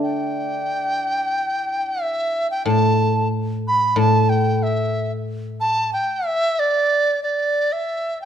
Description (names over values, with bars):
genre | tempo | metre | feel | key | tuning
chinese traditional, Chinese chamber ensemble | 92 BPM | 4/4 | straight | D zhi mode | A4 = 439 Hz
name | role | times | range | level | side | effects
bright large dizi | melody | 0.0-8.2 s | D5 to B5 | -20 LUFS | right 1 dB | none
hammered dulcimer | second line | 0.0-2.4 s | D4 to A4 | -33 LUFS | right 7 dB | none
guzheng | accompaniment | 0.0-5.9 s | A2 to D4 | -20 LUFS | left 1 dB | none
room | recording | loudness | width
moderate recital hall reverb, RT60 1.6 s | dark, warm production | -18 LUFS | side -9 dB against mid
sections
0.0-8.2 A section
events
none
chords
none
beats
| 0.03 0.69 1.36 2.02 | 2.67 3.32 3.98 4.63 | 5.28 5.93 6.58 7.23 | 7.88